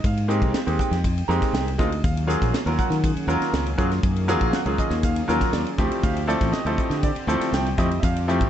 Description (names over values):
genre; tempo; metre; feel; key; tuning
electric jazz fusion; 120 BPM; 4/4; straight; unclear; A4 = 443 Hz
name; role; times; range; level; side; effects
bright grand piano; accompaniment; 0.0-8.5 s; F3 to Bb5; -24 LUFS; right 1 dB; none
modern bright fingered electric bass; bass; 0.0-8.5 s; A1 to Eb3; -24 LUFS; left 1 dB; none
tight funk drum kit; drums; 0.0-8.5 s; hi-hat, kick drum, ride cymbal, snare drum; -26 LUFS; equal; none
brassy analog pad; sustained chords; 2.0-8.5 s; D3 to Ab4; -31 LUFS; equal; chorus
room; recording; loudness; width
light reverb; dark, warm production, nothing above 8.0 kHz; -20 LUFS; side -10 dB against mid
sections
0.0-8.5 A section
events
none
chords
0.0 Fm11; 2.0 Ebm11; 5.8 Dm11